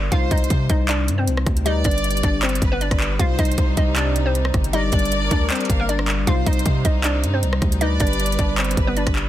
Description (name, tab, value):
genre	hip hop, trap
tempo	156 BPM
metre	4/4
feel	half-time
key	C minor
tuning	A4 = 440 Hz
part	hollow square pluck	melody	0.0-9.3 s	Bb3 to F5	-25 LUFS	equal	chorus, low-pass filter, ping-pong delay
part	warbly lo-fi synth keys	accompaniment	0.0-9.3 s	C3 to D5	-29 LUFS	left 2 dB	chorus, low-pass filter
part	long sustained 808-style bass	bass	0.0-9.3 s	G1 to C3	-22 LUFS	equal	none
part	clear studio violin section	second line	0.1-9.3 s	B4 to F5	-29 LUFS	equal	ping-pong delay
part	trap drum kit	drums	0.1-9.3 s	handclaps, hi-hat, kick drum, rim click	-21 LUFS	equal	none
part	warm chamber string section	sustained chords	3.2-9.3 s	C3 to B4	-30 LUFS	equal	none
room	little or no reverb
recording	dense, heavily limited modern master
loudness	-17 LUFS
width	side -13 dB against mid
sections	0.0-9.3 A section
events	none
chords	0.1 Cm; 1.7 G; 3.2 Cm; 4.7 Gm; 6.3 Cm; 7.8 G